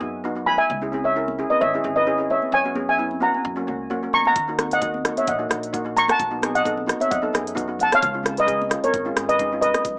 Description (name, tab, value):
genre	calypso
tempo	131 BPM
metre	4/4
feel	swing 53% on 16ths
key	unclear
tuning	A4 = 435 Hz
part	steel pan	accompaniment	0.0-9.8 s	G#3 to A#4	-27 LUFS	equal	none
part	upright bass	bass	0.0-10.0 s	G#1 to F#2	-36 LUFS	equal	none
part	steel pan	melody	0.5-10.0 s	A#4 to C#6	-20 LUFS	equal	none
part	congas	percussion	0.5-10.0 s	none	-35 LUFS	left 1 dB	none
part	pop drum kit	drums	4.4-10.0 s	hi-hat, kick drum, rim click	-25 LUFS	equal	none
room	wet small room reverb, RT60 0.5 s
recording	small speaker sound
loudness	-19 LUFS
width	side -32 dB against mid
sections	0.0-10.0 A section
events	none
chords	0.0 B6; 0.7 C#m7; 2.5 F#sus4; 3.4 F#; 4.4 D#m; 6.2 B7; 8.0 C#7